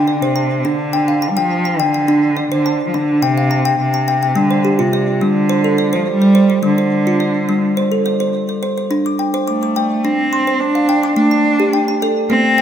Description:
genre	world meditative, meditative tuned percussion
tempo	106 BPM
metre	4/4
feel	straight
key	D minor pentatonic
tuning	A4 = 444 Hz
part	rich cello	melody	0.0-12.6 s	C3 to D4	-16 LUFS	right 2 dB	diffuse ambient delay
part	kalimba	arpeggios	0.0-12.6 s	G3 to D6	-16 LUFS	left 1 dB	diffuse ambient delay
room	wet echo chamber reverb, RT60 2.0 s, studio reverb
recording	none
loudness	-13 LUFS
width	side -9 dB against mid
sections	0.0-8.9 A section; 8.9-12.6 B section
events	none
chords	0.0 Dm; 4.4 G5; 8.9 Dm; 11.2 Bbmaj13/A (rootless)

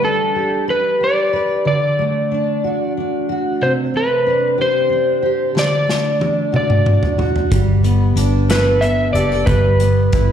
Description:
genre	six-eight pop ballad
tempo	61 BPM (dotted quarters)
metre	6/8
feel	straight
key	G major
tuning	A4 = 436 Hz
part	electric slide guitar	melody	0.0-10.3 s	A4 to E5	-17 LUFS	left 1 dB	slapback echo
part	fingerpicked steel-string acoustic guitar	accompaniment	0.0-10.3 s	C3 to B4	-20 LUFS	right 1 dB	double-tracked left and right, slapback echo
part	clean electric guitar	arpeggios	0.0-0.3, 7.5-10.3 s	G3 to A4	-24 LUFS	right 1 dB	slapback echo, digital delay
part	unplugged drum kit	drums	5.6-10.3 s	hi-hat, kick drum, snare drum, toms	-19 LUFS	equal	none
part	vintage muted fingered electric bass	bass	7.5-10.3 s	F#1 to G1	-15 LUFS	equal	none
room	light reverb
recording	live gig heard through the venue's PA, recital hall reverb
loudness	-14 LUFS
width	side -9 dB against mid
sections	0.0-10.3 A section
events	drum fill 5.6-7.5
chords	0.0 Gadd9; 1.7 D; 3.6 Csus2; 5.6 D; 7.5 Gadd9; 9.5 Em/G

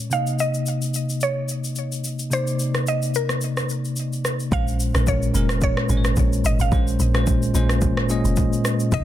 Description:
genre	amapiano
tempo	109 BPM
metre	4/4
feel	swing 55% on 16ths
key	Bb minor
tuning	A4 = 440 Hz
part	mallet-like synth pluck	melody	0.0-9.0 s	Bb4 to F5	-27 LUFS	right 1 dB	chorus, low-pass filter, ping-pong delay
part	bell-like tine electric piano	accompaniment	0.0-9.0 s	Bb2 to Eb5	-23 LUFS	left 1 dB	fast stereo tremolo, low-pass filter
part	deep house drum kit	drums	0.1-9.0 s	kick drum, rim click, shaker	-25 LUFS	equal	none
part	deep log drum bass	bass	4.5-9.0 s	F1 to C2	-21 LUFS	equal	none
room	light reverb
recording	dense, heavily limited modern master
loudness	-19 LUFS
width	side -12 dB against mid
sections	0.0-4.5 A section; 4.5-9.0 B section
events	filter sweep 0.0-4.5; drop 4.5-9.0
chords	0.1 Cm9; 4.5 Bbm9

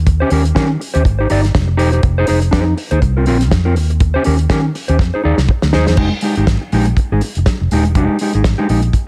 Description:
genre	disco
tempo	122 BPM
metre	4/4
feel	swing 56% on 16ths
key	F minor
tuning	A4 = 439 Hz
part	fingered electric bass	bass	0.0-8.9 s	Eb1 to Eb3	-17 LUFS	equal	none
part	mellow electric guitar	accompaniment	0.1-9.0 s	Ab3 to D5	-20 LUFS	equal	plate reverb
part	damped 70s drum kit	drums	0.1-9.1 s	crash cymbal, hi-hat, kick drum, snare drum	-19 LUFS	equal	none
room	light reverb, small room ambience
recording	none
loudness	-14 LUFS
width	mono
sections	0.0-6.0 A section; 6.0-9.1 B section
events	drum fill 5.0-6.0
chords	0.0 Eb7; 1.0 Abmaj7; 2.0 Fm7; 3.0 C7sus4; 3.8 Eb7; 5.0 Fm7 (rootless); 6.0 Fm9 (rootless)

